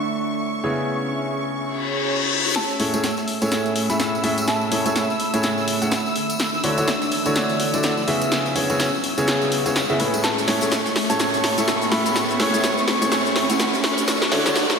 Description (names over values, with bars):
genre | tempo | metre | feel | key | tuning
piano house | 125 BPM | 4/4 | swing 59% on 16ths | A major | A4 = 440 Hz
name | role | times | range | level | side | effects
rich studio violin section | sustained chords | 0.0-14.8 s | C#6 to E6 | -28 LUFS | equal | low-pass filter
clear baby grand piano | riff | 0.0-14.5 s | A2 to F#5 | -23 LUFS | equal | low-pass filter, tape echo
airy breathy pad | texture | 0.0-14.8 s | A3 to B5 | -27 LUFS | right 1 dB | chorus
reverse cymbal and riser | sound effects | 1.8-14.8 s | none | -28 LUFS | left 1 dB | none
soft synth bell | melody | 2.6-5.0, 10.2-13.2 s | A5 to C#6 | -30 LUFS | equal | chorus, phaser, tape echo
breakbeat sampler-style drum kit | drums | 2.6-14.8 s | hi-hat, snare drum | -34 LUFS | equal | none
punchy analog drum machine | drums | 2.6-14.8 s | hi-hat, shaker, snare drum | -24 LUFS | left 1 dB | high-pass filter on snare, high-pass filter on hats, high-pass filter on perc
tambourine | percussion | 2.6-14.8 s | none | -34 LUFS | right 2 dB | none
room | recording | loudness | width
wet lush hall reverb, RT60 1.7 s, digital ambience | dreamy mix soaked in reverb, high-pass filter | -18 LUFS | side -5 dB against mid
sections
0.0-2.6 A section; 2.6-14.8 B section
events
reverse cymbal 1.8-2.6; build-up 2.6-14.8; drum fill 2.6-14.8; riser 2.6-14.8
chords
0.0 Dmaj9; 0.6 C#m7; 2.6 Amaj7; 6.4 Dmaj9; 8.3 C#m7; 10.2 Amaj7; 14.1 Dmaj9